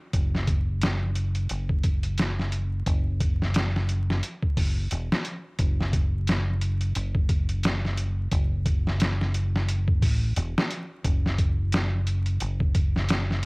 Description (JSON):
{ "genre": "trip hop", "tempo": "88 BPM", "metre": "4/4", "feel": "swing 58% on 16ths", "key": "F# minor", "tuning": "A4 = 440 Hz", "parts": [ { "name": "deep dub fingered electric bass", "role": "bass", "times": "0.1-13.5 s", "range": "E1 to A1", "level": "-26 LUFS", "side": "equal", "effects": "none" }, { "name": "trip hop sampler-style drum kit", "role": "drums", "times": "0.1-13.5 s", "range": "hi-hat, kick drum, snare drum", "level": "-25 LUFS", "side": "equal", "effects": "cassette tape" } ], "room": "little or no reverb", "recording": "home recording on cassette, vinyl crackle", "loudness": "-23 LUFS", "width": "side -33 dB against mid", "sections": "0.0-13.5 A section", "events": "none", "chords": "none" }